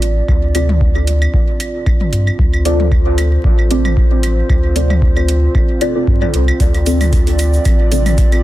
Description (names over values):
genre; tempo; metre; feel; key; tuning
dub techno; 114 BPM; 4/4; swing 55% on 16ths; D minor; A4 = 440 Hz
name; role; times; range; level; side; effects
dark analog pad; sustained chords; 0.0-8.4 s; C4 to D5; -22 LUFS; right 2 dB; chorus, vintage 12-bit sampler grit, sidechain pumping
soft dub sub bass; bass; 0.0-8.4 s; A1 to G2; -14 LUFS; equal; sidechain pumping
electronic hi-hat; drums; 0.0-8.4 s; none; -26 LUFS; right 2 dB; none
electronic kick drum; drums; 0.3-8.3 s; none; -14 LUFS; equal; none
electronic claves and toms; percussion; 0.3-8.4 s; none; -25 LUFS; left 1 dB; overdrive, sidechain pumping on perc, sidechain pumping on toms, dub echo
deep mellow chord stab; stabs; 0.5-8.1 s; C4 to D5; -20 LUFS; equal; chorus, phaser, sidechain pumping, dub echo
tube shaker; percussion; 6.6-8.3 s; none; -30 LUFS; right 4 dB; none
room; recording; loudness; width
little or no reverb; dense, heavily limited modern master, vinyl crackle; -11 LUFS; side -15 dB against mid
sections
0.0-8.4 A section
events
none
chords
0.0 Dm7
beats
| 0.28 0.81 1.34 1.86 | 2.39 2.92 3.44 3.97 | 4.50 5.02 5.55 6.07 | 6.60 7.13 7.65 8.18